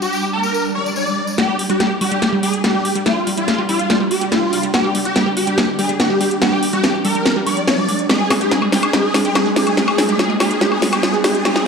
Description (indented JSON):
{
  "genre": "psychedelic trance",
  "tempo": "143 BPM",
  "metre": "4/4",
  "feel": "straight",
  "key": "unclear",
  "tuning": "A4 = 440 Hz",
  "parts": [
    { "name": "swarming rave lead", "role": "melody", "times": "0.0-11.7 s", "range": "F4 to D5", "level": "-19 LUFS", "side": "equal", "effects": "chorus, phaser, tape echo" },
    { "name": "swarming drone", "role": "sustained chords", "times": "0.0-11.7 s", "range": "G3 to D4", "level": "-24 LUFS", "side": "right 2 dB", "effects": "built-in reverb" },
    { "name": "tambourine", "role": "percussion", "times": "0.0-1.4 s", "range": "none", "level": "-29 LUFS", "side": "left 3 dB", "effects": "none" },
    { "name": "swell and riser", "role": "sound effects", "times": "0.7-11.7 s", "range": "none", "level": "-29 LUFS", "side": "right 1 dB", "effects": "none" },
    { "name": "wide unison pluck", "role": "riff", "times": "1.4-11.5 s", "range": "G3 to Ab3", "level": "-22 LUFS", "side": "right 1 dB", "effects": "auto-pan, tape echo" },
    { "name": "drum and bass drum kit", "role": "drums", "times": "1.4-11.6 s", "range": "hi-hat, snare drum, woodblock", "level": "-18 LUFS", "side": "left 1 dB", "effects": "low-pass filter on cymbals, low-pass filter on snare, low-pass filter on hats, low-pass filter on perc, low-pass filter on room" }
  ],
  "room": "moderate plate reverb, RT60 2.1 s",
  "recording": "played on a big sound system in a bare room, large studio reverb, high-pass filter",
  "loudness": "-14 LUFS",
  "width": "side -5 dB against mid",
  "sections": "0.0-1.4 A section; 1.4-11.7 B section",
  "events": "swell 0.7-1.4; build-up 1.4-11.7; drum fill 1.4-11.7; filter sweep on synth drone 1.4-11.7; riser 3.6-11.7",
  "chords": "0.0 G5"
}